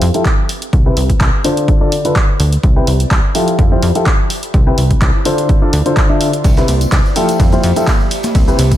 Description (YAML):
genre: piano house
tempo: 126 BPM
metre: 4/4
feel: swing 54% on 16ths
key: C major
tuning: A4 = 440 Hz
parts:
  - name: plucky analog bass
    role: bass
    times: 0.0-8.8 s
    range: C2 to F2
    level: -14 LUFS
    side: equal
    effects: sidechain pumping
  - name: punchy analog drum machine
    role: drums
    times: 0.0-8.8 s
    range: handclaps, hi-hat, shaker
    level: -21 LUFS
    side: right 1 dB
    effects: none
  - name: ethereal airy pad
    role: texture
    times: 0.2-8.8 s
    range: F4 to G5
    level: -28 LUFS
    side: equal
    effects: ensemble chorus, built-in reverb, sidechain pumping
  - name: clear grand piano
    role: riff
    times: 0.1-8.6 s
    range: C3 to E5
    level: -16 LUFS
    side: left 1 dB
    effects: sidechain pumping, low-pass filter, tape echo
  - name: electronic kick drum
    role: drums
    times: 0.3-8.8 s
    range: none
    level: -13 LUFS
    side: equal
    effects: none
  - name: breakbeat sampler-style drum kit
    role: drums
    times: 6.4-8.7 s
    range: hi-hat, ride cymbal, snare drum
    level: -29 LUFS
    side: right 2 dB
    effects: high-pass filter on cymbals, high-pass filter on snare, high-pass filter on hats
  - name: tambourine and congas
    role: percussion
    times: 6.5-8.8 s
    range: none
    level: -24 LUFS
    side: equal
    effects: none
room: light reverb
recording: none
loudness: -10 LUFS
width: side -12 dB against mid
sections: 0.0-8.8 A section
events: fade-in on ambient pad 0.0-8.8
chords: 0.5 Cmaj7(no3); 1.4 Dm7; 2.6 Cmaj7; 3.4 Fmaj9; 4.3 Cmaj7; 5.3 Dm7; 6.4 Cmaj7; 7.2 Fmaj9; 8.1 Cmaj7